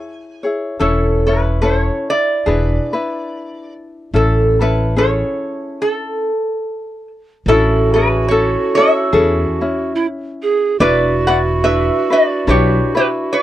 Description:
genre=Hawaiian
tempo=72 BPM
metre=4/4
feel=swing 57% on 8ths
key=A major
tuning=A4 = 440 Hz
part: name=metal-body resonator slide guitar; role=melody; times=0.0-13.4 s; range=E4 to G#5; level=-17 LUFS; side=right 1 dB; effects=none
part: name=ukulele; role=accompaniment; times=0.0-13.4 s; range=C#4 to C#5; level=-19 LUFS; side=left 2 dB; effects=none
part: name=upright bass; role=bass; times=0.8-12.8 s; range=E1 to E2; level=-17 LUFS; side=equal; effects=none
part: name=breathy bright large pan pipes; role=second line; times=7.5-13.4 s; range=E4 to G#4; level=-19 LUFS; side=right 4 dB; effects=none
room=light reverb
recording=dry, close 1970s-style studio recording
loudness=-13 LUFS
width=side -13 dB against mid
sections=0.0-7.5 A section; 7.5-13.4 A section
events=stop 5.8-7.5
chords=0.0 Amaj7 (rootless); 0.8 A/E; 2.5 E7; 4.1 Amaj7; 10.8 E7(no3)

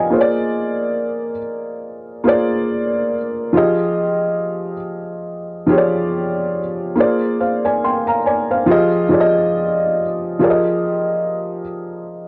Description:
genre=hip hop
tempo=70 BPM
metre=4/4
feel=swing 55% on 16ths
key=F dorian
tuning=A4 = 440 Hz
part: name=felt-muted upright piano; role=solo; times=0.0-12.3 s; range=F3 to C6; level=-18 LUFS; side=equal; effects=cassette tape, low-pass filter
room=light reverb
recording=dry, gritty hardware recording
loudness=-18 LUFS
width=mono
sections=0.0-10.4 A section; 10.4-12.3 B section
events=none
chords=0.1 Bb7; 3.5 Fm9; 7.0 Bb7; 8.7 Fm7; 10.4 Fm11

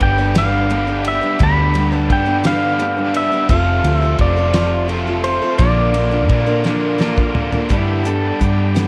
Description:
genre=folk rock and heartland rock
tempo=57 BPM (dotted quarters)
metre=6/8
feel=straight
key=G mixolydian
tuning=A4 = 440 Hz
part: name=pedal steel guitar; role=melody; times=0.0-7.3 s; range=C5 to B5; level=-22 LUFS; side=equal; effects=none
part: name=picked steel-string acoustic guitar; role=accompaniment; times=0.0-8.9 s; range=G2 to B4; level=-24 LUFS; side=equal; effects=none
part: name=tonewheel organ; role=sustained chords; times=0.0-8.9 s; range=A4 to E6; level=-33 LUFS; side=equal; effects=none
part: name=cranked stack guitar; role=riff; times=0.0-8.9 s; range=F2 to G4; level=-25 LUFS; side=equal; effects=overdrive
part: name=hollow-body short-scale fingered electric bass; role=bass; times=0.0-8.9 s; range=F1 to Bb2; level=-21 LUFS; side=equal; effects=none
part: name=damped 70s drum kit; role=drums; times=0.0-8.9 s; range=hi-hat, kick drum, ride cymbal, snare drum, toms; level=-23 LUFS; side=equal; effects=none
part: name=electric slide guitar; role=second line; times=7.7-8.9 s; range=E4 to A4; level=-27 LUFS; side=equal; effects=none
room=light reverb, small room ambience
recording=worn, warbling old tape, cassette tape, warbly pitch drift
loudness=-16 LUFS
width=mono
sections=0.0-7.7 A section; 7.7-8.9 B section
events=drum fill 6.7-7.7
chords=0.0 G; 3.5 F; 5.6 Bb; 7.7 Gadd9

